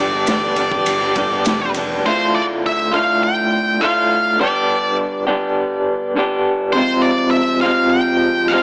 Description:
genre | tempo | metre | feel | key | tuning
psychedelic rock | 102 BPM | 4/4 | straight | D dorian | A4 = 437 Hz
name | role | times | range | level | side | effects
octave-fuzz lead guitar | melody | 0.0-8.6 s | C5 to G5 | -21 LUFS | equal | distortion
electric guitar through a small old amp | riff | 0.0-8.6 s | D2 to G4 | -20 LUFS | equal | tremolo
fuzz picked electric bass | bass | 0.0-2.0 s | F1 to G1 | -31 LUFS | equal | overdrive
raw garage drum kit | drums | 0.3-1.9 s | kick drum, ride cymbal, snare drum | -28 LUFS | equal | none
maracas | percussion | 0.3-1.9 s | none | -36 LUFS | equal | none
room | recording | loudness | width
light reverb, studio ambience | small speaker sound | -17 LUFS | mono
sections
0.0-2.1 A section; 2.1-8.6 B section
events
none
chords
0.0 G; 2.1 Dm; 4.4 G; 6.8 Fm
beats
0.28 0.87 1.46 | 2.05 2.64 3.23 3.82 | 4.41 5.00 5.58 6.17 | 6.76 7.35 7.94 8.53

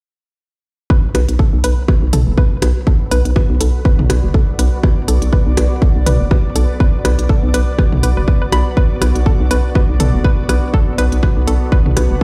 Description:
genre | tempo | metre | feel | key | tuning
minimal techno | 122 BPM | 4/4 | swing 56% on 16ths | B minor | A4 = 442 Hz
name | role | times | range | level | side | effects
hollow square pluck | riff | 0.9-12.2 s | A4 to B5 | -26 LUFS | equal | chorus, sidechain pumping, digital delay
electronic kick drum | drums | 0.9-12.2 s | none | -15 LUFS | equal | none
bubbling stepped-filter texture | texture | 1.1-12.2 s | B3 to B4 | -33 LUFS | equal | none
granular cloud pad | texture | 2.5-12.2 s | B3 to D5 | -28 LUFS | equal | built-in reverb, sidechain pumping
hollow knocking FM bass | bass | 1.1-12.2 s | F#1 to B1 | -16 LUFS | equal | sidechain pumping
electronic hi-hat | drums | 1.1-12.1 s | none | -27 LUFS | equal | none
electronic percussion blips and toms | percussion | 1.1-12.1 s | none | -23 LUFS | equal | digital delay
room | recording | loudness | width
little or no reverb | played on a big sound system in a bare room, large studio reverb | -14 LUFS | mono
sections
0.9-12.2 A section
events
none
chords
0.9 Bm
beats
| 0.90 1.39 1.89 2.38 | 2.87 3.36 3.85 4.34 | 4.84 5.33 5.82 6.31 | 6.80 7.29 7.79 8.28 | 8.77 9.26 9.75 10.25 | 10.74 11.23 11.72 12.21

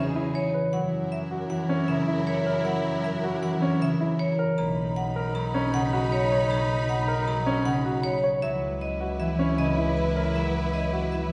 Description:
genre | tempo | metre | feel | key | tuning
classical, minimalist pattern music | 156 BPM | 5/4 | straight | unclear | A4 = 440 Hz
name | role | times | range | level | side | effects
marimba with hard mallets | melody | 0.0-11.3 s | B4 to A#5 | -33 LUFS | equal | none
dark soprano saxophone | second line | 0.0-11.3 s | D#4 to G#4 | -36 LUFS | equal | none
concert harp | accompaniment | 0.0-11.3 s | C#3 to A#3 | -31 LUFS | equal | none
clear symphonic string section | sustained chords | 0.0-11.3 s | D#4 to B5 | -38 LUFS | equal | none
warm baby grand piano | arpeggios | 0.0-11.2 s | C#4 to C#5 | -33 LUFS | equal | none
clear double bass | bass | 0.0-11.3 s | B1 to F#2 | -34 LUFS | equal | none
room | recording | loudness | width
wet recital hall reverb, RT60 1.5 s | recorded in a church or concert hall, nothing above 10.9 kHz | -26 LUFS | mono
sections
0.0-11.3 A section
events
none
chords
0.0 Emaj9; 0.7 F#7; 4.6 Bmaj7; 8.4 C#m11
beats
0.35 | 0.73 1.12 1.50 1.89 2.27 | 2.66 3.04 3.43 3.81 4.20 | 4.58 4.96 5.35 5.73 6.12 | 6.50 6.89 7.27 7.66 8.04 | 8.43 8.81 9.20 9.58 9.96 | 10.35 10.73 11.12

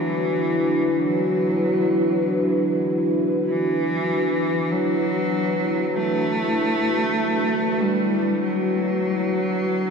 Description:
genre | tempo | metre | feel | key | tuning
ambient | free time | none | none | unclear | A4 = 444 Hz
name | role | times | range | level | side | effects
rich cello | melody | 0.0-9.9 s | E3 to A3 | -23 LUFS | equal | ping-pong delay
dark analog pad | sustained chords | 0.0-9.9 s | D4 to B4 | -22 LUFS | equal | chorus
room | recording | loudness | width
wet huge ambient reverb, RT60 9.3 s | none | -19 LUFS | side -5 dB against mid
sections
0.0-9.9 A section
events
none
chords
0.0 Esus2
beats
free time

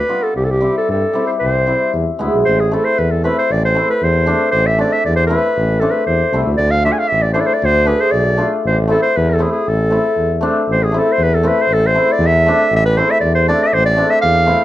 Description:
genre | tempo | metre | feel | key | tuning
klezmer | 117 BPM | 2/4 | straight | A harmonic minor | A4 = 438 Hz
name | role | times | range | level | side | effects
warm clarinet | melody | 0.0-14.6 s | G4 to G#5 | -15 LUFS | equal | none
hammered dulcimer | accompaniment | 0.0-14.6 s | G3 to G#4 | -18 LUFS | left 2 dB | none
clear tuba | bass | 0.4-14.5 s | A1 to G2 | -17 LUFS | equal | none
room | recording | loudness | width
moderate studio reverb, RT60 0.5 s | dark, warm production | -12 LUFS | side -14 dB against mid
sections
0.0-2.5 A section; 2.5-10.7 B section; 10.7-14.6 B section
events
speeding up 0.0-14.6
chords
0.4 C; 1.9 E7; 2.5 Am; 6.6 Dm; 8.6 Am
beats
| 0.36 0.88 | 1.41 1.93 | 2.45 2.97 | 3.49 4.01 | 4.53 5.05 | 5.56 6.08 | 6.59 7.11 | 7.62 8.13 | 8.65 9.16 | 9.67 10.18 | 10.69 11.20 | 11.70 12.21 | 12.71 13.22 | 13.72 14.23

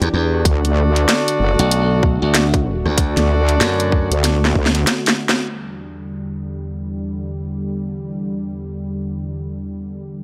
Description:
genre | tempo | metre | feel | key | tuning
glitch hop | 95 BPM | 4/4 | swing 61% on 16ths | E minor | A4 = 441 Hz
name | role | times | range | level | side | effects
warm analog pad | sustained chords | 0.0-10.2 s | E2 to G4 | -27 LUFS | equal | chorus, sidechain pumping
glassy slap bass | bass | 0.0-4.1 s | B1 to F#2 | -20 LUFS | equal | none
drum and bass drum kit | drums | 0.0-5.7 s | crash cymbal, hi-hat, rim click, snare drum | -20 LUFS | equal | overdrive, low-pass filter on hats, low-pass filter on snare, low-pass filter on cymbals
mellow horn section | stabs | 0.3-4.7 s | D4 to D5 | -25 LUFS | equal | vintage 12-bit sampler grit, sidechain pumping, analog delay
wobble bass | bass | 0.5-4.8 s | F#1 to D2 | -18 LUFS | equal | chorus, tube saturation
electronic kick drum | drums | 0.5-4.7 s | none | -19 LUFS | equal | overdrive
room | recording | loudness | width
little or no reverb | dry, gritty hardware recording, transformer saturation | -18 LUFS | mono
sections
0.0-5.5 A section; 5.5-10.2 B section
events
drop 0.0-5.5; drum fill 4.2-5.5; band accent 5.3-5.6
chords
0.4 D; 5.5 Em7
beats
| 0.45 1.08 1.71 2.34 | 2.98 3.61 4.24 4.87 | 5.50 6.13 6.76 7.40 | 8.03 8.66 9.29 9.92

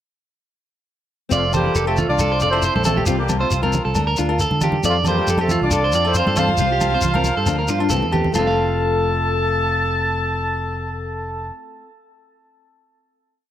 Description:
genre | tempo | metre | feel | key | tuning
highlife guitar band | 136 BPM | 4/4 | straight | F major | A4 = 440 Hz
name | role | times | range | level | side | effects
warm horn section | melody | 1.3-11.5 s | F3 to A5 | -22 LUFS | equal | none
fingerpicked steel-string acoustic guitar | accompaniment | 1.3-11.9 s | E3 to Bb4 | -26 LUFS | left 8 dB | none
electric guitar at the edge of break-up | arpeggios | 1.3-11.6 s | F4 to F5 | -22 LUFS | right 4 dB | tape echo
fingered electric bass | bass | 1.3-11.5 s | F1 to D3 | -23 LUFS | equal | none
shekere | percussion | 1.3-8.5 s | none | -24 LUFS | left 1 dB | none
agogo bells | percussion | 1.5-8.5 s | none | -29 LUFS | equal | none
congas | percussion | 1.5-8.6 s | none | -25 LUFS | right 2 dB | none
room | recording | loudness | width
light reverb, small room ambience | none | -16 LUFS | side -11 dB against mid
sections
1.3-8.4 A section; 8.4-11.9 final chord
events
drum fill 7.9-8.4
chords
1.3 F; 3.1 Csus4; 4.0 Bb/D; 4.8 F; 6.6 Csus4; 7.5 Bb/D; 7.9 C6; 8.4 F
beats
| 1.32 1.75 2.19 2.63 | 3.07 3.51 3.95 4.39 | 4.83 5.27 5.71 6.15 | 6.59 7.03 7.47 7.91 | 8.35 8.79 9.23 9.67 | 10.11 10.55 10.99 11.43

